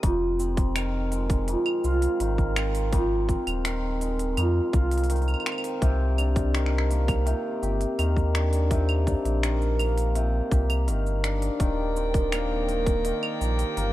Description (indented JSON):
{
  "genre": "folktronica",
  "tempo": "83 BPM",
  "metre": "4/4",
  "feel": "straight",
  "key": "F dorian",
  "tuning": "A4 = 439 Hz",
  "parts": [
    { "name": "cimbalom", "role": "arpeggios", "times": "0.0-13.9 s", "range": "F2 to G4", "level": "-27 LUFS", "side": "equal", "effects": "digital delay" },
    { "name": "warm sub bass", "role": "bass", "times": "0.0-13.9 s", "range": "Eb1 to F2", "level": "-25 LUFS", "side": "equal", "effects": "none" },
    { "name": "electronic kick drum", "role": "drums", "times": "0.0-13.0 s", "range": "none", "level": "-24 LUFS", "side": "equal", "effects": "overdrive" },
    { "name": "organic electronic drum kit", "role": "drums", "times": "0.0-13.9 s", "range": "claves, finger snaps, hi-hat, shaker", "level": "-33 LUFS", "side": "right 1 dB", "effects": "overdrive" },
    { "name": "rich string quartet", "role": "sustained chords", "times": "11.6-13.9 s", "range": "Eb3 to G5", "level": "-36 LUFS", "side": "left 1 dB", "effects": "vintage 12-bit sampler grit" }
  ],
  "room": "little or no reverb",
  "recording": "dark, warm production",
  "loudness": "-22 LUFS",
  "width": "side -15 dB against mid",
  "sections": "0.0-13.9 A section",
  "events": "none",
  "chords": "0.0 Fm7; 5.8 Cm9; 11.6 Ebmaj7",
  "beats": "| 0.04 0.76 1.48 2.20 | 2.93 3.65 4.37 5.09 | 5.82 6.54 7.26 7.99 | 8.71 9.43 10.16 10.88 | 11.60 12.32 13.05 13.77"
}